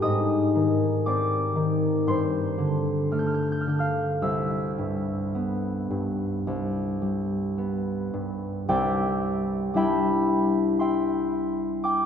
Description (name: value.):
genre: classical, solo harp piece.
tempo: 53-60 BPM.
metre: 4/4.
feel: rubato.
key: unclear.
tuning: A4 = 440 Hz.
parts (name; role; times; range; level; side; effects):
concert harp; solo; 0.0-12.1 s; C2 to G6; -23 LUFS; left 1 dB; none.
room: wet church reverb, RT60 3.5 s.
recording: recorded in a church or concert hall.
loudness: -23 LUFS.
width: side -8 dB against mid.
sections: 0.0-8.7 A section; 8.7-12.1 A section.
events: none.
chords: 0.0 Abmaj7; 2.1 G9sus4; 4.2 Cmaj7; 8.7 Cadd9.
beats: | 0.02 1.06 2.07 3.11 | 4.20 5.34 6.47 7.58 | 8.69 9.76 10.81 11.85.